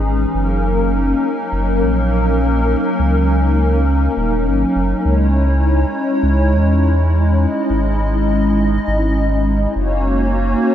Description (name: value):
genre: IDM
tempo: 102 BPM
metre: 4/4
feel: straight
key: unclear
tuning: A4 = 436 Hz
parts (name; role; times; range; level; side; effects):
- hollow soft pad; sustained chords; 0.0-10.7 s; E3 to D#5; -16 LUFS; equal; ensemble chorus
- warm sub bass; bass; 0.0-10.6 s; D#1 to E2; -16 LUFS; equal; none
room: light reverb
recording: none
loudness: -14 LUFS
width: side -10 dB against mid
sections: 0.0-10.7 A section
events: none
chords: 0.3 F#6; 5.1 C#madd9; 9.8 F#6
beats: | 0.35 0.94 1.52 2.11 | 2.70 3.29 3.88 4.46 | 5.05 5.64 6.23 6.82 | 7.41 8.00 8.58 9.17 | 9.76 10.35